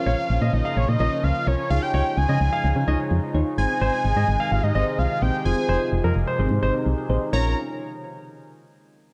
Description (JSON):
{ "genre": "synth-pop", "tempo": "128 BPM", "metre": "4/4", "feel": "straight", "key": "Bb minor", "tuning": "A4 = 436 Hz", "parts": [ { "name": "fat analog lead", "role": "melody", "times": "0.0-7.5 s", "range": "Db5 to Bb5", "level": "-29 LUFS", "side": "equal", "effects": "phaser" }, { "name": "soft electric-piano-like synth keys", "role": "accompaniment", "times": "0.0-7.5 s", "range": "C4 to Db5", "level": "-31 LUFS", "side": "equal", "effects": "chorus, phaser" }, { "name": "sweeping resonant pad", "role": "sustained chords", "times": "0.0-7.5 s", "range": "C3 to Bb4", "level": "-33 LUFS", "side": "equal", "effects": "chorus, phaser" }, { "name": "warm concert grand piano", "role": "second line", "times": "0.1-7.5 s", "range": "Bb4 to F5", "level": "-32 LUFS", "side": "equal", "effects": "tape echo" }, { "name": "solid FM bass", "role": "bass", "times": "0.1-7.5 s", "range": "F1 to Db3", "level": "-24 LUFS", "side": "equal", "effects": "none" } ], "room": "moderate lush hall reverb, RT60 2.4 s", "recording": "dark, warm production", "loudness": "-22 LUFS", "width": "mono", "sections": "0.0-7.3 A section; 7.3-9.1 B section", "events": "none", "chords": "0.0 Bbm; 1.7 Dbadd9; 3.6 Ab; 5.5 Fm; 6.4 Ab; 7.3 Bbm" }